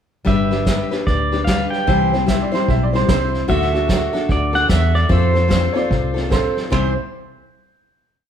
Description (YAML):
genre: honky-tonk and classic country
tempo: 148 BPM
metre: 4/4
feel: swing 62% on 8ths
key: C major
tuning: A4 = 440 Hz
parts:
  - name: picked steel-string acoustic guitar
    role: accompaniment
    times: 0.2-6.9 s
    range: C3 to C5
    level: -21 LUFS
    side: left 3 dB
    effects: none
  - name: pedal steel guitar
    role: melody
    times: 0.3-6.3 s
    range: C5 to G5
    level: -21 LUFS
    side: right 1 dB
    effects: none
  - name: vintage muted fingered electric bass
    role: bass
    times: 0.3-7.0 s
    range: G1 to F2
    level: -20 LUFS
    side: equal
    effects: none
  - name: vintage brush drum kit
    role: drums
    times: 0.3-6.8 s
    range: hi-hat, kick drum, ride cymbal, snare drum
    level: -21 LUFS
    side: equal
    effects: none
  - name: clear upright piano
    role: second line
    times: 2.3-7.0 s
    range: A4 to E5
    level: -23 LUFS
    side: right 6 dB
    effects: none
room: moderate large studio reverb, RT60 1.2 s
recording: band playing live in one room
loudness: -15 LUFS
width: side -8 dB against mid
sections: 0.3-6.7 verse; 6.7-8.3 final chord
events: none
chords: 0.3 G; 1.9 C; 3.5 D; 5.1 F; 6.7 C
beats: | 0.26 0.67 1.07 1.47 | 1.88 2.28 2.68 3.09 | 3.49 3.89 4.30 4.70 | 5.11 5.51 5.91 6.32 | 6.72